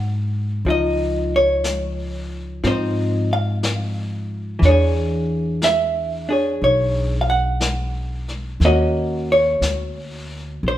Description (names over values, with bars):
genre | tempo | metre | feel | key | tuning
jazz ballad | 60 BPM | 4/4 | swing 67% on 8ths | unclear | A4 = 440 Hz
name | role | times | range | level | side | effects
vintage hollow-body jazz guitar | accompaniment | 0.0-10.8 s | D3 to F#5 | -19 LUFS | equal | none
upright bass | bass | 0.0-10.8 s | Bb1 to Ab2 | -22 LUFS | equal | none
vintage brush drum kit | drums | 0.6-10.8 s | brushed snare drum, hi-hat, snare drum | -29 LUFS | left 2 dB | none
room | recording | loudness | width
moderate large studio reverb, RT60 1.1 s | minimal, uncompressed stereo recording | -17 LUFS | side -13 dB against mid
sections
0.0-10.8 A section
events
none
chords
0.0 D9; 0.6 Dbmaj9; 4.6 E13; 8.6 Ebm7